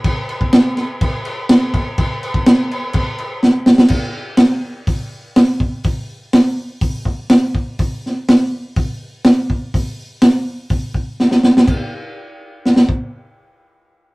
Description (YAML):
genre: rock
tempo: 124 BPM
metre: 4/4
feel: straight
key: none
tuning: none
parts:
  - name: crunchy breakbeat drum kit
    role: drums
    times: 0.0-13.0 s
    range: crash cymbal, hi-hat, kick drum, snare drum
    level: -13 LUFS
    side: equal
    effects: none
room: light reverb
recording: rough rehearsal-room recording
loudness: -13 LUFS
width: side -24 dB against mid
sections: 0.0-3.9 A section; 3.9-11.7 B section; 11.7-14.1 C section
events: drum fill 3.4-3.9, 11.2-11.7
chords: none